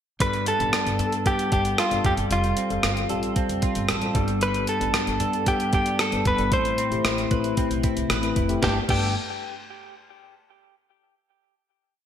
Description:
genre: 1980s-style pop.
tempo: 114 BPM.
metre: 4/4.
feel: straight.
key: G mixolydian.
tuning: A4 = 440 Hz.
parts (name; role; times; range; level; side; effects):
direct-recorded clean electric guitar; melody; 0.2-9.1 s; F4 to C5; -26 LUFS; equal; ping-pong delay.
mellow tine electric piano; accompaniment; 0.2-9.1 s; G2 to B5; -27 LUFS; left 3 dB; none.
direct-recorded clean electric guitar; riff; 0.2-9.1 s; G3 to B4; -32 LUFS; right 5 dB; analog chorus, ping-pong delay.
upright bass; bass; 0.2-9.1 s; F1 to G2; -30 LUFS; right 1 dB; none.
clean 12-bit digital drum machine; drums; 0.2-9.0 s; crash cymbal, hi-hat, kick drum, rim click, snare drum; -26 LUFS; equal; gated reverb.
room: wet lush hall reverb, RT60 1.7 s, digital ambience.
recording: bright 1980s-style digital production.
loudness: -21 LUFS.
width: side -9 dB against mid.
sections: 0.2-8.6 verse; 8.6-10.7 final chord.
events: none.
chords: 0.2 Gadd9; 2.0 Fadd9; 4.2 Gadd9; 6.5 Amadd9; 8.6 Gadd9.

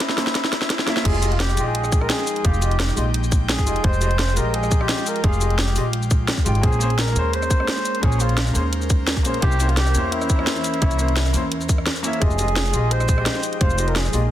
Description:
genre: liquid drum and bass.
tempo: 172 BPM.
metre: 4/4.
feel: straight.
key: F minor.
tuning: A4 = 439 Hz.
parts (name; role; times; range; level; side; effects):
mellow flugelhorn; melody; 0.0-14.3 s; E4 to C5; -26 LUFS; equal; ping-pong delay.
airy breathy pad; sustained chords; 0.0-14.3 s; E3 to G5; -31 LUFS; right 1 dB; chorus, sidechain pumping.
garage drum kit; drums; 0.0-14.2 s; crash cymbal, hi-hat, rim click, shaker, snare drum; -24 LUFS; equal; overdrive, studio reverb.
riser; sound effects; 0.0-1.1 s; none; -30 LUFS; right 1 dB; none.
clear grand piano; accompaniment; 0.2-14.2 s; Ab3 to G5; -27 LUFS; left 2 dB; ping-pong delay.
upright bass; bass; 1.1-14.3 s; F1 to E2; -22 LUFS; equal; none.
electronic kick drum; drums; 1.1-13.7 s; none; -19 LUFS; equal; overdrive, studio reverb.
room: light reverb, digital ambience.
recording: dense, heavily limited modern master.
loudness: -18 LUFS.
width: side -12 dB against mid.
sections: 0.0-1.1 A section; 1.1-14.3 B section.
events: build-up 0.0-1.1; drum fill 0.0-1.1; riser 0.0-1.1; filter sweep on grand piano 0.0-1.1; drop 1.1-14.3.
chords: 0.0 C7b9; 1.1 Fm9; 6.6 Bbm9; 9.4 C7b9; 12.2 Fm9.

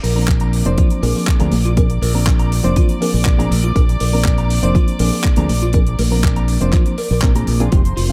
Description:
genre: nu-disco, nu disco.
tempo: 121 BPM.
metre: 4/4.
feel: straight.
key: unclear.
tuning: A4 = 441 Hz.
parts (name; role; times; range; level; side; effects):
dark chamber string section; sustained chords; 0.0-8.1 s; C5 to D6; -31 LUFS; equal; sidechain pumping.
electric guitar at the edge of break-up; riff; 0.0-8.1 s; F4 to Bb5; -29 LUFS; equal; subtle chorus, dub echo.
modern bright fingered electric bass; bass; 0.0-8.1 s; F1 to D2; -19 LUFS; equal; none.
damped 70s drum kit; drums; 0.0-8.1 s; handclaps, hi-hat; -28 LUFS; equal; none.
reed electric piano; accompaniment; 0.2-8.1 s; F3 to C5; -24 LUFS; equal; fast tremolo, dub echo.
electronic kick drum; drums; 0.3-7.8 s; none; -17 LUFS; equal; none.
congas; percussion; 0.8-7.6 s; none; -28 LUFS; equal; none.
room: light reverb, small room ambience.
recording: echo-heavy mix.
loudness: -15 LUFS.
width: mono.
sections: 0.0-8.1 A section.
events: none.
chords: 0.0 Bb7.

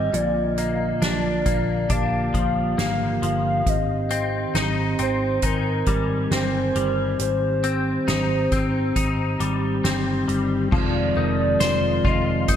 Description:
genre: dream pop.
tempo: 68 BPM.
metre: 4/4.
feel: straight.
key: Ab lydian.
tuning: A4 = 441 Hz.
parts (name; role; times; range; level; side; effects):
warbly nostalgic lead; melody; 0.0-12.6 s; Bb4 to F5; -26 LUFS; equal; chorus, digital delay.
mellow tonewheel organ; sustained chords; 0.0-12.6 s; D3 to Ab5; -26 LUFS; right 1 dB; slow rotary speaker.
semi-hollow electric guitar; arpeggios; 0.0-12.6 s; Bb2 to C5; -27 LUFS; left 5 dB; ensemble chorus, digital delay.
vintage muted picked electric bass; bass; 0.0-12.6 s; F1 to Bb1; -26 LUFS; equal; none.
soft-mallet drum kit; drums; 0.1-12.6 s; crash cymbal, hi-hat, kick drum, snare drum, tambourine; -26 LUFS; equal; gated reverb.
vibraphone with hard mallets; texture; 11.2-12.6 s; Bb4; -36 LUFS; left 1 dB; digital delay.
room: wet lush hall reverb, RT60 3.0 s.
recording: bright 1980s-style digital production.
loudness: -20 LUFS.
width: side -9 dB against mid.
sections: 0.0-10.7 A section; 10.7-12.6 B section.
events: none.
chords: 0.1 Bb; 10.7 Fm7.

